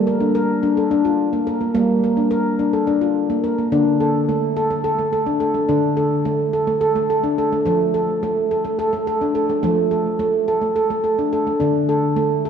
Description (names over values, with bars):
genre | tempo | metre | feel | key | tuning
world meditative, meditative tuned percussion | 213 BPM (eighths) | 7/8 | straight | D minor | A4 = 440 Hz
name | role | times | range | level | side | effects
handpan | solo | 0.0-12.5 s | D3 to Bb4 | -17 LUFS | equal | tape echo
room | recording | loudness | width
wet concert hall reverb, RT60 2.4 s | dark, warm production | -17 LUFS | side -7 dB against mid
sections
0.0-3.7 A section; 3.7-12.5 B section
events
none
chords
0.0 Gm; 3.7 D5; 7.7 F; 11.6 D5